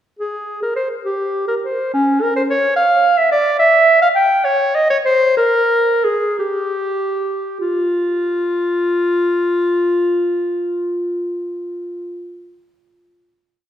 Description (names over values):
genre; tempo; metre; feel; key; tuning
classical, baroque-style fantasia for unaccompanied clarinet; 46-74 BPM (dotted quarters); 6/8; rubato; F minor; A4 = 440 Hz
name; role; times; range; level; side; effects
warm clarinet; solo; 0.2-12.3 s; Db4 to G5; -14 LUFS; equal; none
room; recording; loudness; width
wet recital hall reverb, RT60 1.8 s; heard from further back in the room; -14 LUFS; side -10 dB against mid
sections
0.2-7.6 A section; 7.6-12.4 final note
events
slowing down 2.8-7.6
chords
none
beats
| 0.18 1.05 | 1.93 2.77 | 3.59 4.45 | 5.37 6.40 | 7.61 8.80 | 10.00 11.19